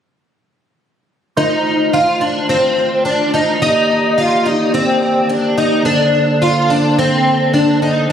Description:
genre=dream pop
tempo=107 BPM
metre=4/4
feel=straight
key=F mixolydian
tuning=A4 = 440 Hz
part: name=percussive tonewheel organ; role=sustained chords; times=1.4-8.1 s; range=D3 to D5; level=-18 LUFS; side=right 1 dB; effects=fast rotary speaker
part: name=picked plugged-in twelve-string acoustic guitar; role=arpeggios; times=1.4-8.1 s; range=C4 to F4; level=-13 LUFS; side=equal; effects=ensemble chorus, ping-pong delay
room=moderate plate reverb, RT60 3.5 s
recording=recorded on a phone in the room, club reverb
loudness=-12 LUFS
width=side -8 dB against mid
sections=1.4-8.1 A section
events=none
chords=1.4 F7; 3.6 Ebmaj7; 5.9 Bbmaj9

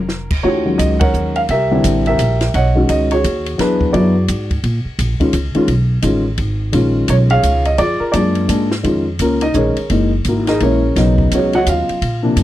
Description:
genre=jazz piano trio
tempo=171 BPM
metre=3/4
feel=swing 62% on 8ths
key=Eb minor, Bb minor from 8.8 s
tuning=A4 = 439 Hz
part: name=dark baby grand piano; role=melody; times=0.0-12.4 s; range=C3 to Gb5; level=-15 LUFS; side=equal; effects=none
part: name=upright bass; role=bass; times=0.0-12.4 s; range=F1 to Bb2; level=-17 LUFS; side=equal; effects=none
part: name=compact cocktail drum kit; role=drums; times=0.1-12.4 s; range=crash cymbal, hi-hat, kick drum, ride cymbal, snare drum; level=-23 LUFS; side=equal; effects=none
room=small room ambience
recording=dry, close 1970s-style studio recording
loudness=-13 LUFS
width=side -14 dB against mid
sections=0.4-8.8 A section; 8.8-12.4 B section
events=band accent 1.0; grand piano solo 8.8-12.4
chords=0.4 Ebm9; 1.5 C9; 2.5 B69; 3.6 E9; 4.6 Ebsus2; 5.7 B7(no3); 6.7 Bbm7; 7.8 Bb7; 8.8 Bbm7; 9.9 Gb13; 10.9 B69

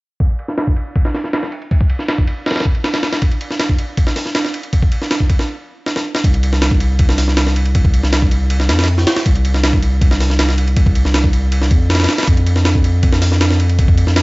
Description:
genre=drum and bass, jungle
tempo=159 BPM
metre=4/4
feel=straight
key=unclear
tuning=A4 = 441 Hz
part: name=breakbeat sampler-style drum kit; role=drums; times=0.2-14.2 s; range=hi-hat, kick drum, ride cymbal, snare drum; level=-14 LUFS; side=equal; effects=low-pass filter on kick, low-pass filter on cymbals, low-pass filter on snare, low-pass filter on hats
part: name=saturated sub bass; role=bass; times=6.2-14.2 s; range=C2 to F2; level=-14 LUFS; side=equal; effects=none
room=little or no reverb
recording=dry, gritty hardware recording, nothing above 7.8 kHz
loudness=-13 LUFS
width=side -23 dB against mid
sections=0.2-6.2 A section; 6.2-14.2 B section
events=filter sweep on drum 0.2-6.2; stop 5.5-6.2; drum fill 5.9-6.2; drop 6.2-14.2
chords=none

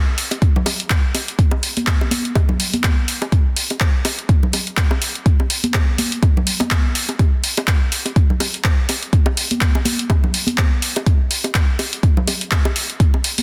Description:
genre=house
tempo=124 BPM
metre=4/4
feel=swing 57% on 16ths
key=none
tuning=none
part: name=punchy analog drum machine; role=drums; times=0.2-13.4 s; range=handclaps, hi-hat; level=-23 LUFS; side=equal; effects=none
part: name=bongos and congas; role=percussion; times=0.3-13.4 s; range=none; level=-26 LUFS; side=equal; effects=none
part: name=electronic kick drum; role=drums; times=0.4-13.1 s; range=none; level=-18 LUFS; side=equal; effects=none
room=light reverb, digital ambience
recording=dense, heavily limited modern master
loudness=-18 LUFS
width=mono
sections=0.0-13.4 A section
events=none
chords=none

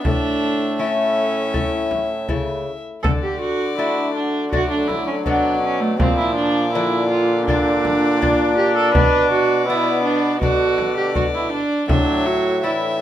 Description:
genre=classical, renaissance-style consort dance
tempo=81 BPM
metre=4/4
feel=straight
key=D major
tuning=A4 = 440 Hz
part: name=rich violin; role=melody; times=0.0-13.0 s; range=D5 to E5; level=-28 LUFS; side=left 4 dB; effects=none
part: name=warm viola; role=second line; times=0.0-13.0 s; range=A3 to B4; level=-21 LUFS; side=right 3 dB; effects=none
part: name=mellow bassoon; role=bass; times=0.0-13.0 s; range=A2 to D3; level=-24 LUFS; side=equal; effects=none
part: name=frame drum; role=percussion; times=0.0-12.2 s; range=none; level=-22 LUFS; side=left 1 dB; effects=none
part: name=brilliant trombone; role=accompaniment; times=0.1-13.0 s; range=D3 to D4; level=-24 LUFS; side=left 2 dB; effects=none
part: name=lute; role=accompaniment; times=0.1-13.0 s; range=A2 to F#4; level=-25 LUFS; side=left 4 dB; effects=none
room=moderate stone room reverb, RT60 1.3 s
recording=none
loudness=-16 LUFS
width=side -11 dB against mid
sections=0.0-13.0 A section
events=none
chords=0.1 A; 3.0 D; 6.0 Bb; 8.9 Bm; 11.9 Asus4

